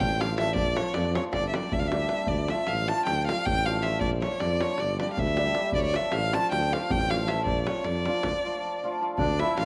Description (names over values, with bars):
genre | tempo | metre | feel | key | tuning
balkan folk, Balkan wedding band | 313 BPM (eighths) | 9/8 | straight | D harmonic minor | A4 = 440 Hz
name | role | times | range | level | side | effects
clear violin | melody | 0.0-9.7 s | C#5 to A5 | -31 LUFS | equal | slapback echo
hammered dulcimer | accompaniment | 0.0-9.7 s | F3 to G4 | -35 LUFS | equal | none
mellow tuba | bass | 0.0-9.7 s | G1 to F2 | -33 LUFS | equal | none
davul | percussion | 0.0-9.7 s | none | -34 LUFS | equal | none
accordion | second line | 9.2-9.7 s | D4 to F4 | -31 LUFS | equal | none
room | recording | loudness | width
moderate echo chamber reverb, RT60 2.7 s | none | -27 LUFS | mono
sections
0.0-9.2 A section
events
break 8.3-9.2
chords
0.0 Dm; 0.5 Bb; 1.3 Gm; 2.3 Dm; 4.0 Bb; 4.8 Gm; 5.7 Dm; 7.5 Bb; 8.2 Dm